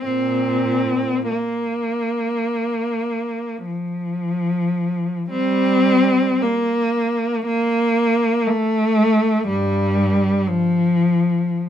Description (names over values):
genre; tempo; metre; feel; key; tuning
classical, free, expressive piece for unaccompanied cello; 28-64 BPM; 4/4; rubato; G minor from 5.3 s; A4 = 440 Hz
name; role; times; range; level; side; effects
warm cello; solo; 0.0-11.7 s; G2 to C4; -17 LUFS; equal; none
room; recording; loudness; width
light reverb; minimal, uncompressed stereo recording; -17 LUFS; side -10 dB against mid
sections
0.0-5.3 A section; 5.3-11.7 B section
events
none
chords
none